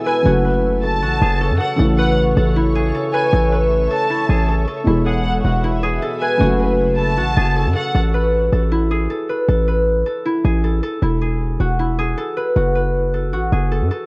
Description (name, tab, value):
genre	hip hop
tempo	156 BPM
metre	4/4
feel	half-time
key	A major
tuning	A4 = 439 Hz
part	concert harp	melody	0.0-14.1 s	E4 to B4	-23 LUFS	equal	none
part	felt-muted upright piano	accompaniment	0.0-8.0 s	B2 to A4	-25 LUFS	equal	none
part	granular cloud pad	sustained chords	0.0-7.9 s	G#4 to E6	-32 LUFS	equal	built-in reverb
part	warm studio violin section	second line	0.1-7.9 s	F#5 to A5	-26 LUFS	equal	tape echo
part	hard-hitting 808-style bass	bass	0.3-13.9 s	E1 to F#2	-20 LUFS	equal	none
room	little or no reverb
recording	worn, warbling old tape, cassette tape, warbly pitch drift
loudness	-18 LUFS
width	mono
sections	0.0-7.9 A section; 7.9-14.1 B section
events	none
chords	0.3 F#m; 1.8 A; 4.9 E; 6.4 F#m; 7.9 Asus2; 11.0 E; 12.6 F#m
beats	| 0.25 0.64 1.02 1.41 | 1.79 2.18 2.56 2.95 | 3.33 3.71 4.10 4.49 | 4.87 5.25 5.64 6.02 | 6.41 6.79 7.18 7.56 | 7.95 8.33 8.71 9.10 | 9.48 9.87 10.25 10.64 | 11.02 11.41 11.79 12.18 | 12.56 12.95 13.33 13.71